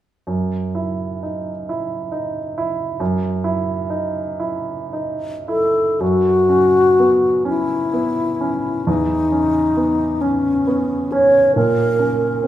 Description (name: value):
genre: classical, impressionist duo for alto flute and grand piano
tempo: 35-46 BPM (dotted quarters)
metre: 6/8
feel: rubato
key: unclear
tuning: A4 = 441 Hz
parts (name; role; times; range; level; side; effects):
- warm baby grand piano; accompaniment; 0.3-12.5 s; E2 to E4; -21 LUFS; right 2 dB; none
- wooden-headed alto flute; melody; 5.5-12.5 s; C#4 to C#5; -15 LUFS; left 1 dB; none
room: wet recital hall reverb, RT60 1.6 s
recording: recorded in a church or concert hall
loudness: -16 LUFS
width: side -12 dB against mid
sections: 0.3-6.0 A section; 6.0-12.5 B section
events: none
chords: 0.3 Esus2/F#; 6.0 F#5; 8.9 E5; 11.6 A#m